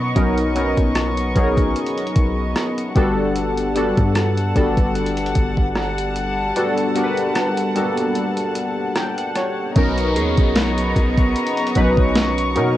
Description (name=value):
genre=contemporary R&B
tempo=75 BPM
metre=4/4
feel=swing 54% on 16ths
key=unclear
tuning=A4 = 440 Hz
part: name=warm analog keys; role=accompaniment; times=0.0-12.8 s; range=F#3 to G5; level=-20 LUFS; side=left 1 dB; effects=chorus, cassette tape
part: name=warm studio string section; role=sustained chords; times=0.0-12.8 s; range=G3 to C#6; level=-24 LUFS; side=left 1 dB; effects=cassette tape
part: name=warm 808-style bass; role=bass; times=0.0-12.8 s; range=G1 to B2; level=-24 LUFS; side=equal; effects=none
part: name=clean 12-bit digital drum machine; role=drums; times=0.2-12.8 s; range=hi-hat, kick drum, rim click, snare drum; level=-20 LUFS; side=equal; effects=overdrive, cassette tape
part: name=downlifter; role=sound effects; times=9.8-12.8 s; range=none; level=-33 LUFS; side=equal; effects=none
part: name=soft synth bell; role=texture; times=10.2-11.7 s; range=G#4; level=-31 LUFS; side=right 3 dB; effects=chorus, phaser, cassette tape, tape echo
room=light reverb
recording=home recording on cassette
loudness=-17 LUFS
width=side -13 dB against mid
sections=0.0-9.8 A section; 9.8-12.8 B section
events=kick muted 6.6-9.8; synth keys fill 8.6-9.8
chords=0.0 Bmaj9; 3.0 Gmaj9; 9.8 Bmaj9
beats=| 0.16 0.96 1.76 2.56 | 3.36 4.16 4.96 5.76 | 6.56 7.36 8.16 8.96 | 9.76 10.56 11.36 12.16